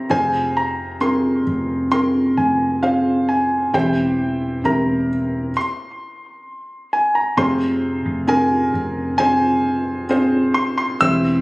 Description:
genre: pop ballad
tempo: 66 BPM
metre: 4/4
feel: straight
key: F harmonic minor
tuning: A4 = 443 Hz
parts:
  - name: bright concert grand piano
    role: melody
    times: 0.0-11.4 s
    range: F5 to E6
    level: -21 LUFS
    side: equal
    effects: tape echo
  - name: felt-muted upright piano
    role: accompaniment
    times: 0.0-11.4 s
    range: C3 to C5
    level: -18 LUFS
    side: equal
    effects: none
  - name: hollow-body short-scale fingered electric bass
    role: bass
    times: 0.1-11.4 s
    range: E1 to F1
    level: -27 LUFS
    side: equal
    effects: none
room: light reverb, studio reverb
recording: recorded on a phone in the room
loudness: -16 LUFS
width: side -22 dB against mid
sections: 0.0-7.4 A section; 7.4-11.4 B section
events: stop 5.6-7.4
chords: 0.1 Fm; 3.7 C/E; 7.4 Fm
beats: | 0.11 1.01 1.92 2.83 | 3.74 4.65 5.56 6.47 | 7.38 8.29 9.20 10.11 | 11.02

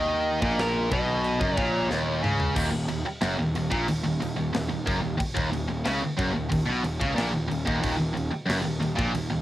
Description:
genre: heavy metal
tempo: 91 BPM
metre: 4/4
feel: straight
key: Eb minor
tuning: A4 = 440 Hz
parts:
  - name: high-gain lead guitar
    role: melody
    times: 0.0-1.9 s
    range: Bb4 to Eb5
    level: -30 LUFS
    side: equal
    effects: distortion, cassette tape, analog delay
  - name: high-gain distorted guitar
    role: riff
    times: 0.0-9.4 s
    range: Eb2 to Eb3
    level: -26 LUFS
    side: equal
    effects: distortion, cassette tape
  - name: fuzz picked electric bass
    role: bass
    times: 0.0-9.4 s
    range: Eb1 to Eb2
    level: -31 LUFS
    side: equal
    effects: overdrive
  - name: tight metal drum kit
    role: drums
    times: 0.4-9.3 s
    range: china cymbal, crash cymbal, kick drum, snare drum, toms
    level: -32 LUFS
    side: equal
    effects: cassette tape
room: little or no reverb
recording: home recording on cassette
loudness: -24 LUFS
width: side -14 dB against mid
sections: 0.0-2.6 A section; 2.6-9.4 B section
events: drum fill 1.9-2.6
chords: 0.0 Ebm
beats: 0.59 1.25 1.90 | 2.56 3.22 3.88 4.54 | 5.20 5.86 6.51 7.17 | 7.83 8.49 9.15

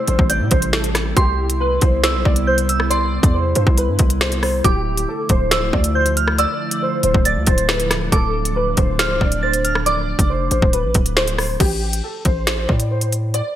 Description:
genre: hip hop, drill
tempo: 138 BPM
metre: 4/4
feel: half-time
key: unclear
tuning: A4 = 440 Hz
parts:
  - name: dark grand piano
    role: melody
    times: 0.0-13.6 s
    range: G4 to D5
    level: -22 LUFS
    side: left 1 dB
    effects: ensemble chorus
  - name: soft synth bell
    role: second line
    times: 0.0-10.7 s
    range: C6 to A6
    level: -23 LUFS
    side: right 4 dB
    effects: chorus, digital delay
  - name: airy breathy pad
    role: sustained chords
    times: 0.0-11.6 s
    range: C3 to E4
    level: -26 LUFS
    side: right 2 dB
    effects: chorus
  - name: distorted 808-style bass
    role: bass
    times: 0.1-13.4 s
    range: C1 to A2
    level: -21 LUFS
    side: equal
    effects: distortion
  - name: drill drum kit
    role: drums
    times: 0.1-13.4 s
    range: crash cymbal, hi-hat, kick drum, rim click, snare drum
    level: -18 LUFS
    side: equal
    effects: overdrive, gated reverb
room: light reverb, digital ambience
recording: bright 1980s-style digital production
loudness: -15 LUFS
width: side -12 dB against mid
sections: 0.0-11.6 A section; 11.6-13.6 B section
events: none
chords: 0.0 Am7; 1.2 Cmaj7; 4.6 Dmadd9; 11.6 Amadd11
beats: 0.30 0.73 | 1.17 1.60 2.04 2.47 | 2.91 3.34 3.78 4.21 | 4.64 5.08 5.51 5.95 | 6.38 6.82 7.25 7.69 | 8.12 8.56 8.99 9.43 | 9.86 10.30 10.73 11.17 | 11.60 12.04 12.47 12.91 | 13.34

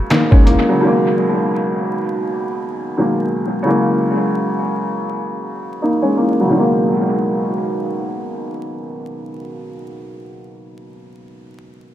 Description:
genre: hip hop, boom-bap hip-hop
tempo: 84 BPM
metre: 4/4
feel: swing 62% on 16ths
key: G# minor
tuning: A4 = 440 Hz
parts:
  - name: clear upright piano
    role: accompaniment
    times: 0.0-11.9 s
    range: B2 to D#4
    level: -17 LUFS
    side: equal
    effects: high-pass filter, low-pass filter, dub echo
  - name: trip hop sampler-style drum kit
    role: drums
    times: 0.1-0.7 s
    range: handclaps, hi-hat, kick drum, snare drum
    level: -12 LUFS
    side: equal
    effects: dub echo
room: light reverb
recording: echo-heavy mix, vinyl crackle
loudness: -15 LUFS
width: side -12 dB against mid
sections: 0.0-6.5 A section; 6.5-9.4 B section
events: filter sweep on upright piano 0.0-6.5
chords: 0.0 F#7; 0.8 G#m9; 3.7 F#7; 6.5 G#m9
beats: 0.11 | 0.82 1.53 2.25 2.96 | 3.68 4.39 5.11 5.82 | 6.53 7.25 7.96 8.68

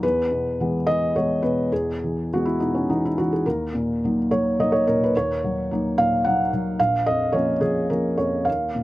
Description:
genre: neoclassical minimalist piano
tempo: 107 BPM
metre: 3/4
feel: uneven beats, rubato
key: Eb minor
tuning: A4 = 441 Hz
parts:
  - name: felt-muted upright piano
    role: solo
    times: 0.0-8.8 s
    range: Bb1 to Gb5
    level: -20 LUFS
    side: equal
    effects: none
room: light reverb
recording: recorded outdoors, with no room sound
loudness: -20 LUFS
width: side -16 dB against mid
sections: 0.0-8.8 A section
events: none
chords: 0.0 E; 3.4 Ebm; 6.8 Bbm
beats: | 0.03 0.58 1.13 | 1.71 2.29 2.87 | 3.44 4.01 4.57 | 5.13 5.68 6.23 | 6.78 7.33 7.89 | 8.47

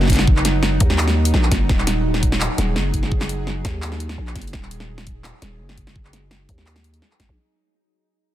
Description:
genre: half-time drum and bass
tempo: 169 BPM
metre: 4/4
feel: half-time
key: Eb minor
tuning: A4 = 441 Hz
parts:
  - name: bowed-like drone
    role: sustained chords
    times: 0.0-7.4 s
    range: Gb3 to Gb5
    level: -27 LUFS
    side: right 2 dB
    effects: built-in reverb, sidechain pumping
  - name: growling 808-style bass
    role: bass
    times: 0.0-7.4 s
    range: Eb1 to Eb2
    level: -21 LUFS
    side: equal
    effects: none
  - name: drum and bass drum kit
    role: drums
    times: 0.0-7.3 s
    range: handclaps, hi-hat, snare drum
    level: -23 LUFS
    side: equal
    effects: none
  - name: electronic kick drum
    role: drums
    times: 0.1-7.3 s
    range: none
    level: -19 LUFS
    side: equal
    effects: none
room: little or no reverb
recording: dense, heavily limited modern master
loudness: -17 LUFS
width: side -13 dB against mid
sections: 0.0-7.4 A section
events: fade-out 0.0-7.4; filter sweep on 808-style bass 0.0-7.4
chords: 0.0 Ebm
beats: | 0.27 0.63 0.98 1.34 | 1.69 2.05 2.40 2.76 | 3.11 3.47 3.82 4.18 | 4.53 4.89 5.24 5.60 | 5.95 6.31 6.66 7.02

